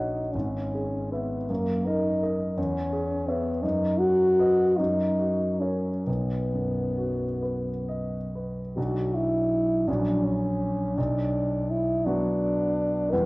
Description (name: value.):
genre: classical, romantic duo for French horn and grand piano.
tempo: 43-57 BPM (dotted quarters).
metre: 6/8.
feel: rubato.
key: B major, B minor from 8.8 s.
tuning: A4 = 442 Hz.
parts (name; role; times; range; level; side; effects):
mellow French horn; melody; 0.0-13.3 s; A#3 to B4; -26 LUFS; equal; none.
warm concert grand piano; accompaniment; 0.0-13.3 s; G#1 to F#5; -27 LUFS; equal; none.
room: wet recital hall reverb, RT60 1.4 s.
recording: worn, warbling old tape, cassette tape, warbly pitch drift.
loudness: -24 LUFS.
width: side -22 dB against mid.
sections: 0.0-8.8 A section; 8.8-13.3 B section.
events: none.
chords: 0.3 E/G#; 1.5 D#m/F#; 2.6 C#m/E; 3.6 B/F#; 4.8 F#; 6.1 B; 8.8 Bm; 9.9 F#/A#; 11.0 Bm.